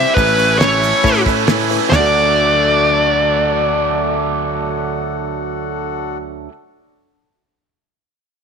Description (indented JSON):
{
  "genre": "folk rock and heartland rock",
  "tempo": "137 BPM",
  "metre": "4/4",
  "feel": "straight",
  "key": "D major",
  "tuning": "A4 = 440 Hz",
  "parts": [
    { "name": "dark smooth lead guitar", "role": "melody", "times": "0.0-6.2 s", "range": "B4 to E5", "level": "-16 LUFS", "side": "left 1 dB", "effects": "overdrive" },
    { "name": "clear grand piano", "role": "accompaniment", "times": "0.0-6.5 s", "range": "E4 to D5", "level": "-29 LUFS", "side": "right 10 dB", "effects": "none" },
    { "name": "picked old ladder-braced acoustic guitar", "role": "accompaniment", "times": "0.0-6.6 s", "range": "D3 to C5", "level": "-24 LUFS", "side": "left 13 dB", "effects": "none" },
    { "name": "hand-pumped harmonium", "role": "sustained chords", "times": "0.0-6.2 s", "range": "D4 to C6", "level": "-26 LUFS", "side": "left 10 dB", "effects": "none" },
    { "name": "biting overdriven guitar", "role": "riff", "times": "0.0-6.5 s", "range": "A2 to F#4", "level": "-20 LUFS", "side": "right 13 dB", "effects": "none" },
    { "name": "picked electric bass", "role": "bass", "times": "0.0-6.5 s", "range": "A1 to A2", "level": "-23 LUFS", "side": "equal", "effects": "none" },
    { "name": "damped 70s drum kit", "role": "drums", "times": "0.2-2.0 s", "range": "hi-hat, kick drum, snare drum, toms", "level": "-19 LUFS", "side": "equal", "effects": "none" },
    { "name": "egg shaker", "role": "percussion", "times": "0.2-2.1 s", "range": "none", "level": "-37 LUFS", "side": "right 18 dB", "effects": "none" }
  ],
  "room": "light reverb, small room ambience",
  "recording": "1960s-style stereo with parts hard left and right",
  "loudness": "-13 LUFS",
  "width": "side -6 dB against mid",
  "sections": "0.0-1.9 A section; 1.9-5.4 B section",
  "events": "none",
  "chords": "0.2 Aadd9; 1.9 D",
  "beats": "| 0.17 0.61 1.04 1.48 | 1.92 2.36 2.79 3.23 | 3.67 4.11 4.54 4.98"
}